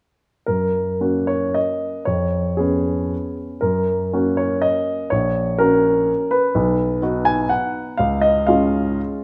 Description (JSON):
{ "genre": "classical, romantic triple-time dance for piano with dotted rhythms", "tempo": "105-134 BPM", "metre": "3/4", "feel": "rubato", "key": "F# major", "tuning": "A4 = 440 Hz", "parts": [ { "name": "warm grand piano", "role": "solo", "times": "0.5-9.2 s", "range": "A#1 to G#5", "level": "-20 LUFS", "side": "equal", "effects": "none" } ], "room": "wet large studio reverb, RT60 1.4 s", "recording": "none", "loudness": "-20 LUFS", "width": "mono", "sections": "0.5-9.2 A section", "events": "none", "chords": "0.5 F#; 2.1 C#7/E#; 3.6 F#; 5.1 F#/A#; 6.5 B; 8.0 C#" }